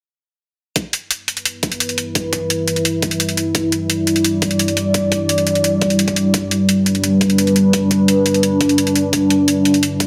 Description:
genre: dark technical drum and bass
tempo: 172 BPM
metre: 4/4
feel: straight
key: E minor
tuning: A4 = 436 Hz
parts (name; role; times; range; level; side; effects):
- deep dark ambient pad; sustained chords; 1.8-10.1 s; G3 to E5; -17 LUFS; equal; chorus, built-in reverb, sidechain pumping
- electronic hi-hat; drums; 0.8-10.1 s; none; -22 LUFS; equal; overdrive, studio reverb
- electronic kick drum; drums; 0.8-10.1 s; none; -24 LUFS; equal; overdrive, high-pass filter on kick, studio reverb
room: moderate lush hall reverb, RT60 2.1 s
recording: dense, heavily limited modern master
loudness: -17 LUFS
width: mono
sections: 0.8-10.1 A section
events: none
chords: 0.8 Em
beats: | 0.76 1.11 1.46 1.80 | 2.15 2.50 2.85 3.20 | 3.55 3.90 4.25 4.59 | 4.94 5.29 5.64 5.99 | 6.34 6.69 7.04 7.38 | 7.73 8.08 8.43 8.78 | 9.13 9.48 9.83

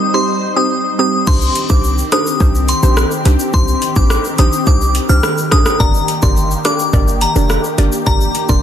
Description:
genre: dancehall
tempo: 106 BPM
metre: 4/4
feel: straight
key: unclear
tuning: A4 = 438 Hz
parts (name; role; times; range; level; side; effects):
- glassy synth bell; melody; 0.0-8.6 s; Bb5 to F6; -18 LUFS; left 2 dB; chorus, digital delay
- lush unison pad; sustained chords; 0.0-8.6 s; Eb3 to C5; -21 LUFS; left 1 dB; chorus, phaser
- hollow square pluck; accompaniment; 0.1-8.6 s; C4 to D5; -20 LUFS; right 3 dB; chorus
- short 808-style bass; bass; 1.3-8.6 s; F1 to C2; -14 LUFS; equal; none
- deep house drum kit; drums; 1.3-8.6 s; crash cymbal, hi-hat, kick drum, rim click, shaker; -16 LUFS; equal; overdrive
room: light reverb, digital ambience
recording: dense, heavily limited modern master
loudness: -11 LUFS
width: side -10 dB against mid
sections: 0.0-1.3 A section; 1.3-8.6 B section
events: none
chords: 0.1 Cm; 1.3 Cmadd9; 5.8 Gm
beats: 0.14 0.71 | 1.27 1.84 2.40 2.97 | 3.54 4.10 4.67 5.24 | 5.80 6.37 6.93 7.50 | 8.07

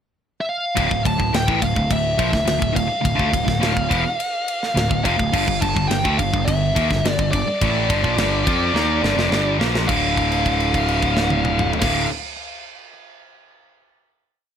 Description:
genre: heavy metal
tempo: 105 BPM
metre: 4/4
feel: straight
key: D minor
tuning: A4 = 440 Hz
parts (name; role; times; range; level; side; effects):
- high-gain lead guitar; melody; 0.4-12.0 s; D5 to A5; -23 LUFS; equal; distortion, ping-pong delay
- distorted electric guitar; riff; 0.8-12.1 s; D2 to F4; -21 LUFS; equal; overdrive
- fuzz picked electric bass; bass; 0.8-12.1 s; D1 to F2; -24 LUFS; equal; overdrive
- tight metal drum kit; drums; 0.8-11.9 s; crash cymbal, kick drum, ride cymbal, snare drum, toms; -24 LUFS; equal; none
room: light reverb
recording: none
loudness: -17 LUFS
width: side -8 dB against mid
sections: 0.0-0.8 pickup bar; 0.8-9.9 riff; 9.9-12.2 final chord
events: drum fill 8.7-9.9; held note 9.9-11.8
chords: 0.0 N.C.; 0.8 Dm; 5.3 G5; 9.9 Dm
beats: 0.20 | 0.76 1.33 1.90 2.47 | 3.04 3.62 4.19 4.76 | 5.33 5.90 6.47 7.04 | 7.61 8.18 8.75 9.31 | 9.88 10.45 11.02 11.58

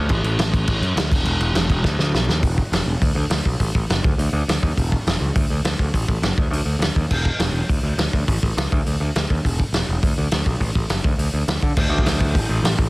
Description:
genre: punk rock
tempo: 206 BPM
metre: 4/4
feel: straight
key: unclear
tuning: A4 = 439 Hz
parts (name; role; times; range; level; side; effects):
- overdriven picked electric bass; bass; 0.0-12.9 s; E1 to D3; -21 LUFS; equal; none
- loose indie drum kit; drums; 0.1-12.9 s; crash cymbal, hi-hat, kick drum, snare drum; -20 LUFS; equal; none
room: little or no reverb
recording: dense, heavily limited modern master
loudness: -18 LUFS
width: side -23 dB against mid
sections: 0.0-2.4 A section; 2.4-11.8 B section; 11.8-12.9 C section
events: drum fill 1.8-2.4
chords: none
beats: | 0.10 0.39 0.68 0.97 | 1.26 1.55 1.85 2.14 | 2.43 2.72 3.01 3.31 | 3.60 3.89 4.18 4.47 | 4.77 5.06 5.35 5.64 | 5.94 6.23 6.52 6.81 | 7.10 7.40 7.69 7.98 | 8.27 8.56 8.85 9.14 | 9.44 9.73 10.02 10.31 | 10.60 10.89 11.18 11.47 | 11.76 12.05 12.35 12.63

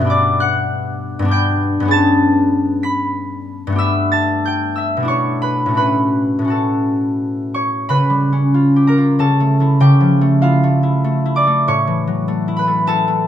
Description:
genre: classical, solo harp piece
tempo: 81-103 BPM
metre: 3/4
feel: rubato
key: A mixolydian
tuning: A4 = 442 Hz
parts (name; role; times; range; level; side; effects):
- concert harp; solo; 0.0-13.3 s; G2 to B6; -13 LUFS; equal; none
room: light reverb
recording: close, detailed microphones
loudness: -13 LUFS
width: side -10 dB against mid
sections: 0.0-7.9 A section; 7.9-13.3 B section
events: none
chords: 0.1 Gmaj7; 1.9 Amaj9/G; 3.8 G69; 5.1 Bm11; 5.8 A6; 7.9 C#7#11; 9.2 A/C#; 9.8 Fmaj7/C#; 11.7 A6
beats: | 0.11 0.71 1.30 | 1.92 2.52 3.11 | 3.77 4.44 5.07 | 5.76 6.49 7.20 | 7.88 8.53 9.17 | 9.79 10.42 11.05 | 11.67 12.27 12.89

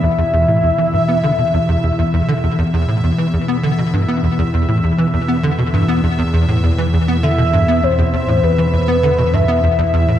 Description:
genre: ambient, sequencer-driven space music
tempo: 100 BPM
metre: 4/4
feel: straight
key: E minor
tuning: A4 = 442 Hz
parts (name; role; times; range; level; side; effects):
- soft octave-layered synth lead; melody; 0.0-2.1, 7.2-10.2 s; B4 to E5; -18 LUFS; left 1 dB; chorus, phaser, shimmer reverb, ping-pong delay
- sweeping resonant pad; sustained chords; 0.0-10.2 s; B2 to B5; -19 LUFS; equal; chorus
- tight sequencer bass; riff; 0.0-10.2 s; E2 to B3; -17 LUFS; equal; ensemble chorus, ping-pong delay
- analog drone; bass; 0.0-10.2 s; E2; -22 LUFS; equal; chorus
- bubbling stepped-filter texture; texture; 0.0-10.2 s; E5; -28 LUFS; right 2 dB; chorus, built-in reverb, shimmer reverb
room: wet spring reverb, RT60 2.5 s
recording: echo-heavy mix, cassette tape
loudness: -13 LUFS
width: side -11 dB against mid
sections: 0.0-10.2 A section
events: fade-in on synth drone 0.0-10.2; fade-in on synth texture 0.0-10.2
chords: 0.0 Em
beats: | 0.03 0.63 1.23 1.83 | 2.43 3.03 3.63 4.23 | 4.83 5.43 6.03 6.63 | 7.23 7.83 8.43 9.03 | 9.63

